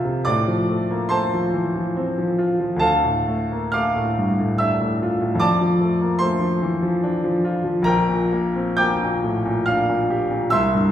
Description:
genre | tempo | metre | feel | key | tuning
classical, romantic nocturne for solo piano | 61-75 BPM | 3/4 | rubato | unclear | A4 = 443 Hz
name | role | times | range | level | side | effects
bright concert grand piano | solo | 0.0-10.9 s | Bb1 to G6 | -18 LUFS | equal | none
room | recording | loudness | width
wet recital hall reverb, RT60 1.6 s | heard from further back in the room | -18 LUFS | side -10 dB against mid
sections
0.0-10.9 A section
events
none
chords
0.3 F/A; 2.8 Dm; 5.4 Dm/F; 7.9 Gm/Bb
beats
| 0.28 1.13 1.97 | 2.81 3.74 4.60 | 5.41 6.22 7.04 | 7.88 8.80 9.68 | 10.52

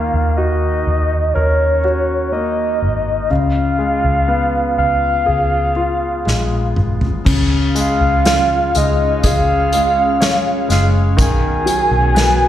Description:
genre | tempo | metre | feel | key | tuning
pop ballad | 61 BPM | 4/4 | straight | unclear | A4 = 438 Hz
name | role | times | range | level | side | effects
soft octave-layered synth lead | melody | 0.0-12.5 s | Db5 to Ab5 | -17 LUFS | equal | chorus, phaser, plate reverb, slapback echo
clear concert grand piano | accompaniment | 0.0-12.5 s | Db3 to Db5 | -20 LUFS | left 2 dB | slapback echo
vintage muted fingered electric bass | bass | 0.0-12.5 s | Gb1 to Eb2 | -18 LUFS | equal | none
unplugged drum kit | drums | 6.3-12.4 s | crash cymbal, hi-hat, kick drum, snare drum, toms | -18 LUFS | equal | none
glassy FM pad | sustained chords | 7.3-12.5 s | Cb4 to F5 | -23 LUFS | left 1 dB | ensemble chorus, built-in reverb
room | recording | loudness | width
light reverb | live gig heard through the venue's PA, recital hall reverb | -13 LUFS | side -11 dB against mid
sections
0.0-7.3 A section; 7.3-12.5 B section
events
drum fill 6.3-7.3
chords
0.0 Ebm7; 3.3 Db7; 7.3 Db; 11.2 Abm7/Cb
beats
0.38 1.35 2.33 | 3.31 4.28 5.27 6.26 | 7.26 8.25 9.23 10.21 | 11.18 12.16

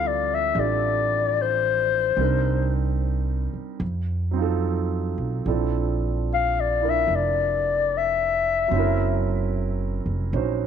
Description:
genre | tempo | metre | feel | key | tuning
jazz ballad | 74 BPM | 4/4 | swing 66% on 8ths | unclear | A4 = 440 Hz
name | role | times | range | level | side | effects
breathy clarinet | melody | 0.0-9.3 s | C5 to F5 | -22 LUFS | left 7 dB | none
warm grand piano | accompaniment | 0.0-10.7 s | F3 to C5 | -28 LUFS | right 10 dB | none
upright bass | bass | 0.0-10.7 s | F1 to F2 | -26 LUFS | right 1 dB | none
room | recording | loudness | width
moderate echo chamber reverb, RT60 2.4 s | 1960s-style stereo with parts hard left and right | -21 LUFS | side -8 dB against mid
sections
0.0-10.7 A section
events
clarinet solo 0.0-10.7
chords
0.0 Dm11; 2.2 Cm7; 3.8 F7b9; 5.5 Bbmaj9#11; 8.7 Gb7#11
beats
0.56 1.37 | 2.18 2.99 3.81 4.63 | 5.46 6.27 7.09 7.91 | 8.72 9.53 10.34

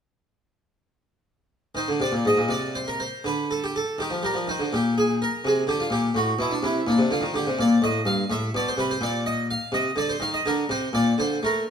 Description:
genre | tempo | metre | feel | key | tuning
classical, baroque-style suite movement for harpsichord | 83 BPM (dotted quarters) | 6/8 | uneven beats, rubato | C minor, G minor from 7.6 s | A4 = 440 Hz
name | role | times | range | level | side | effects
harpsichord | solo | 1.7-11.7 s | G2 to F5 | -22 LUFS | equal | none
room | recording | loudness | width
moderate recital hall reverb, RT60 1.4 s | close, detailed microphones | -22 LUFS | side -7 dB against mid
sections
1.8-11.7 A section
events
none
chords
1.8 Cm; 3.2 N.C.; 4.0 Ebmaj13; 4.7 Bb13; 6.2 Am69; 6.9 Bb69; 7.6 Gm; 8.3 Amadd9; 9.0 N.C.; 9.7 Cm; 10.4 Bbadd9; 11.2 D5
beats
| 1.76 2.51 | 3.25 4.00 | 4.73 5.45 | 6.16 6.87 | 7.59 8.29 | 9.01 9.72 | 10.44 11.18

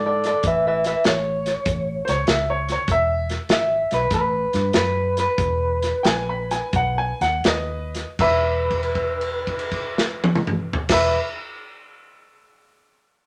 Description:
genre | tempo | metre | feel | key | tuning
electric blues shuffle | 78-98 BPM | 4/4 | swing 68% on 8ths | E major | A4 = 440 Hz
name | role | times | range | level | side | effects
electric guitar through a small old amp | melody | 0.0-11.2 s | A4 to E5 | -25 LUFS | equal | none
vintage muted fingered electric bass | bass | 0.0-11.2 s | E1 to G#2 | -30 LUFS | equal | none
natural country drum kit | drums | 0.2-11.1 s | crash cymbal, hi-hat, kick drum, snare drum, toms | -26 LUFS | equal | none
clear upright piano | second line | 2.0-11.2 s | B4 to B5 | -25 LUFS | equal | none
room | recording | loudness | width
wet studio reverb, RT60 0.6 s | none | -22 LUFS | mono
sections
0.0-8.2 A section; 8.2-11.2 B section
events
slowing down 2.9-8.2; held note 8.2-10.8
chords
0.4 Aadd9; 2.9 E; 4.1 Asus2; 5.4 E5; 6.7 B; 8.2 E5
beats
| 0.44 1.05 1.66 2.27 | 2.88 3.49 4.11 4.74 | 5.38 6.05 6.74 7.45 | 8.19 8.96 9.72 10.49

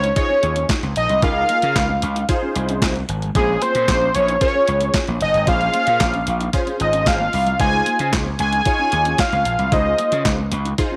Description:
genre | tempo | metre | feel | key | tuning
early-eighties boogie funk | 113 BPM | 4/4 | straight | Db major | A4 = 440 Hz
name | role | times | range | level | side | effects
fat analog lead | melody | 0.0-10.3 s | Ab4 to Ab5 | -21 LUFS | equal | tape echo
mellow electric guitar | riff | 0.0-11.0 s | Ab3 to Eb4 | -35 LUFS | equal | none
gritty slap bass | bass | 0.0-10.7 s | Gb1 to Db3 | -25 LUFS | equal | overdrive
crisp 8-bit digital drum machine | drums | 0.0-10.9 s | handclaps, hi-hat, kick drum, snare drum | -24 LUFS | equal | overdrive
funky polysynth comp | accompaniment | 0.2-11.0 s | Db4 to Db5 | -29 LUFS | equal | chorus
room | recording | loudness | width
light reverb | none | -18 LUFS | mono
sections
0.0-11.0 A section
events
none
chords
0.0 Dbmaj9; 3.4 Bbm7; 7.6 Dbmaj9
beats
0.16 0.69 | 1.23 1.76 2.29 2.82 | 3.35 3.88 4.41 4.94 | 5.47 6.00 6.54 7.07 | 7.60 8.13 8.66 9.19 | 9.72 10.25 10.78

